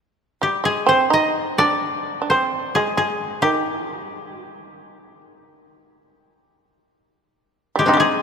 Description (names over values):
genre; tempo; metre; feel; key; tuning
japanese traditional, Japanese chamber music; 66 BPM; 4/4; rubato; C hirajoshi; A4 = 441 Hz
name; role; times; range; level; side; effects
koto; melody; 0.4-8.2 s; Ab3 to Eb5; -20 LUFS; left 2 dB; none
shamisen; second line; 0.4-8.2 s; G3 to Eb4; -21 LUFS; right 4 dB; none
room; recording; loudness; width
moderate cathedral reverb, RT60 4.3 s; minimal, uncompressed stereo recording; -17 LUFS; side -6 dB against mid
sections
0.0-8.2 A section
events
none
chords
none